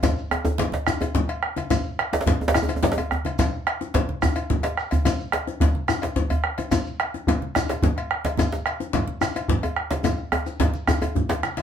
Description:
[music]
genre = west african traditional, West African drum ensemble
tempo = 144 BPM (dotted quarters)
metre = 12/8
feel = straight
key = none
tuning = none
[part]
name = bombo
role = percussion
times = 0.0-11.6 s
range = none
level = -25 LUFS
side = equal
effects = none
[part]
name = congas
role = percussion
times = 0.0-11.6 s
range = none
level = -30 LUFS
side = right 4 dB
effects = none
[part]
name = cowbell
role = percussion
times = 0.0-11.6 s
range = none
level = -32 LUFS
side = left 5 dB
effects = none
[part]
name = djembe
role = percussion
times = 0.0-11.6 s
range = none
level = -28 LUFS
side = left 6 dB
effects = none
[part]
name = djembe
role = percussion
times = 0.0-11.4 s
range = none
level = -25 LUFS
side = right 1 dB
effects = none
[part]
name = shekere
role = percussion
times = 0.0-11.5 s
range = none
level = -36 LUFS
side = right 2 dB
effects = none
[sound]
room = wet small room reverb, RT60 0.6 s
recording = band playing live in one room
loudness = -21 LUFS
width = side -8 dB against mid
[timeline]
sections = 0.0-11.6 A section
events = drum fill 10.0-11.6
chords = none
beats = | 0.03 0.45 0.87 1.29 | 1.71 2.13 2.55 2.97 | 3.38 3.80 4.22 4.64 | 5.06 5.47 5.89 6.31 | 6.72 7.14 7.55 7.97 | 8.39 8.80 9.22 9.63 | 10.05 10.46 10.88 11.29

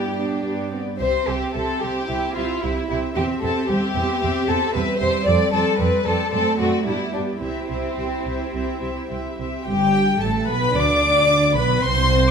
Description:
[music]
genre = quick classical-period movement for string orchestra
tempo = 106-115 BPM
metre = 4/4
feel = rubato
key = C major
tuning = A4 = 440 Hz
[part]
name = warm chamber violin section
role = melody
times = 0.0-12.3 s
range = D5 to D6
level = -26 LUFS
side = left 4 dB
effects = none
[part]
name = warm studio violin section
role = second line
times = 0.0-12.3 s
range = C4 to D5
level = -23 LUFS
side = left 2 dB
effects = none
[part]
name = warm chamber viola section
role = accompaniment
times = 0.0-12.3 s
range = B3 to D5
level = -26 LUFS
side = right 1 dB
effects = none
[part]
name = clear chamber double bass section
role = bass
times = 0.0-12.3 s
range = G1 to G2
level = -26 LUFS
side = right 3 dB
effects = none
[part]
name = warm chamber cello section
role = bass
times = 0.0-12.3 s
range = G3 to E4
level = -26 LUFS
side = right 3 dB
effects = none
[sound]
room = wet recital hall reverb, RT60 1.3 s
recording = minimal, uncompressed stereo recording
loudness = -18 LUFS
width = side -6 dB against mid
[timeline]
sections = 0.0-9.7 A section; 9.7-12.3 B section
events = none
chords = 0.0 G; 1.0 C; 3.2 C/E; 5.3 Dm7/F; 6.3 D7/F#; 6.9 G; 7.4 C; 9.7 G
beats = 0.45 | 1.00 1.55 2.09 2.63 | 3.16 3.69 4.22 4.75 | 5.27 5.79 6.32 6.86 | 7.41 7.97 8.54 9.10 | 9.66 10.21 10.75 11.29 | 11.83

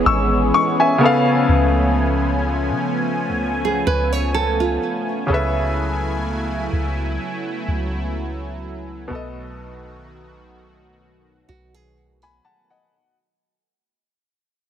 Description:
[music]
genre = contemporary R&B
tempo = 63 BPM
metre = 4/4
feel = swing 54% on 16ths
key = unclear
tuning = A4 = 441 Hz
[part]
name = clear grand piano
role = accompaniment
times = 0.0-13.2 s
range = B2 to E6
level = -20 LUFS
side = left 2 dB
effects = none
[part]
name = warm analog pad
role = sustained chords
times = 0.0-12.9 s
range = D#3 to G#5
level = -23 LUFS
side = equal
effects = chorus
[part]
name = soft 808-style bass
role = bass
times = 0.0-12.4 s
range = G#1 to C#3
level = -23 LUFS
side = equal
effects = none
[part]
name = nylon-string guitar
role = arpeggios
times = 3.6-5.3, 11.5-12.9 s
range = E#4 to C#5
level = -21 LUFS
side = right 6 dB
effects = digital delay
[sound]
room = light reverb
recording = none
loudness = -17 LUFS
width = side -9 dB against mid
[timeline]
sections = 0.0-12.9 A section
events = fade-out 0.7-12.9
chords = 0.0 E6; 1.0 C#7b13; 5.3 F#m11/C#; 9.1 B7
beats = 0.54 | 1.49 2.44 3.39 4.35 | 5.30 6.25 7.20 8.15 | 9.11 10.06 11.01 11.96

